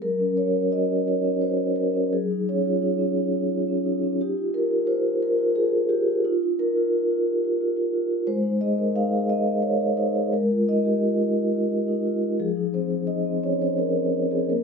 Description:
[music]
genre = classical, contemporary piece for solo vibraphone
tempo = 87 BPM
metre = 3/4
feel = rubato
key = unclear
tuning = A4 = 441 Hz
[part]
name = vibraphone with soft mallets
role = solo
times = 0.0-14.6 s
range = F3 to F5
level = -21 LUFS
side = equal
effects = none
[sound]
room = light reverb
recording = minimal, uncompressed stereo recording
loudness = -21 LUFS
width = side -5 dB against mid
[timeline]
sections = 0.0-14.6 A section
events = none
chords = 0.0 Gb5; 2.1 Dbadd9/Gb; 4.2 Ebadd9; 8.3 Absus2; 10.3 Ebadd9/Ab; 12.4 Fm7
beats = | 0.02 0.72 1.41 | 2.12 2.82 3.50 | 4.19 4.88 5.56 | 6.25 6.95 7.62 | 8.29 8.96 9.63 | 10.32 11.03 11.71 | 12.40 13.09 13.79 | 14.51

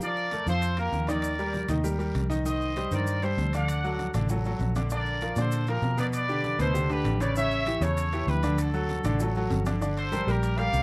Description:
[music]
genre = latin, salsa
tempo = 196 BPM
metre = 4/4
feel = straight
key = G minor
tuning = A4 = 440 Hz
[part]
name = bright trumpet section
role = melody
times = 0.0-10.8 s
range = F#4 to F#5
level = -33 LUFS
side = equal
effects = none
[part]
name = bright grand piano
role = accompaniment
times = 0.0-10.8 s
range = B2 to F5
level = -33 LUFS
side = equal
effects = none
[part]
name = congas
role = percussion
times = 0.0-10.8 s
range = none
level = -40 LUFS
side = equal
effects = none
[part]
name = guiro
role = percussion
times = 0.0-10.8 s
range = none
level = -53 LUFS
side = equal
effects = none
[part]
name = maracas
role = percussion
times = 0.0-10.8 s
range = none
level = -49 LUFS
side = equal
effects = none
[part]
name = timbales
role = percussion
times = 0.3-10.8 s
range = none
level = -44 LUFS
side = equal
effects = none
[part]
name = vintage muted fingered electric bass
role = bass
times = 0.5-10.8 s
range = G1 to B2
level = -31 LUFS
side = equal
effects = none
[sound]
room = little or no reverb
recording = rough home demo mix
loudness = -27 LUFS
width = mono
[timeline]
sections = 0.0-9.8 A section; 9.8-10.8 B section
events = drum fill 4.3-4.9, 9.2-9.8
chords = 0.0 Bbmaj7; 1.2 Ebmaj7; 2.5 Cm; 3.7 D; 4.9 Bbadd9; 6.1 G; 7.4 A7; 8.6 D; 9.8 Gm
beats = | 0.01 0.32 0.62 0.93 | 1.24 1.54 1.85 2.15 | 2.46 2.77 3.07 3.38 | 3.68 3.99 4.30 4.60 | 4.91 5.21 5.52 5.83 | 6.13 6.44 6.75 7.05 | 7.36 7.67 7.97 8.28 | 8.59 8.89 9.20 9.51 | 9.81 10.12 10.43 10.73

